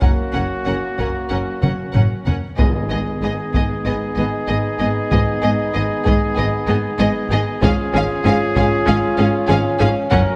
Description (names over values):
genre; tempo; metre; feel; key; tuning
cinematic, epic orchestral film score; 95 BPM; 4/4; straight; G# dorian; A4 = 440 Hz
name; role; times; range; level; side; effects
clear symphonic violin section; melody; 0.0-10.2 s; D#5 to F#5; -30 LUFS; equal; none
warm symphonic violin section; second line; 0.0-10.2 s; G#4 to A#4; -30 LUFS; equal; none
clear symphonic viola section; accompaniment; 0.0-10.2 s; B3 to C#4; -30 LUFS; equal; none
mellow French horn section; sustained chords; 0.0-10.4 s; A#3 to F#4; -27 LUFS; equal; none
clear trumpet; stabs; 0.0-10.4 s; F#4 to A#4; -27 LUFS; equal; none
clear symphonic double bass section; bass; 0.0-10.2 s; F#1 to G#1; -26 LUFS; equal; none
warm symphonic cello section; bass; 0.0-10.2 s; F#2 to G#2; -25 LUFS; equal; none
taiko ensemble; drums; 0.0-10.4 s; none; -23 LUFS; equal; none
timpani; percussion; 2.6-3.5 s; G#2; -29 LUFS; equal; none
room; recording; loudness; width
moderate scoring stage reverb, RT60 1.8 s; none; -18 LUFS; mono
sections
0.0-10.4 A section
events
drum fill 1.6-2.6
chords
0.0 F#; 2.6 G#m; 7.6 C#/G#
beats
| 0.03 0.67 1.31 1.95 | 2.59 3.22 3.86 4.49 | 5.12 5.75 6.38 7.00 | 7.63 8.25 8.88 9.50 | 10.13